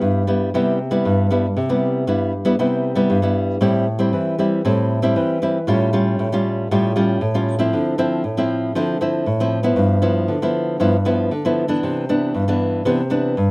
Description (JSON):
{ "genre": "samba", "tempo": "117 BPM", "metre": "4/4", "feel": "straight", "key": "C major, A minor from 3.6 s", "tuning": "A4 = 440 Hz", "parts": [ { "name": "nylon-string guitar", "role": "solo", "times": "0.0-13.5 s", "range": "G2 to E#4", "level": "-16 LUFS", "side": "equal", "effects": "none" } ], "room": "little or no reverb", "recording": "recorded outdoors, with no room sound", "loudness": "-16 LUFS", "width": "side -26 dB against mid", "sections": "0.0-3.6 A section; 3.6-13.5 B section", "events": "none", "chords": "0.0 Cmaj7; 3.6 Am7; 5.7 A7b13; 7.7 Dm9; 9.8 G6; 11.8 Cmaj9" }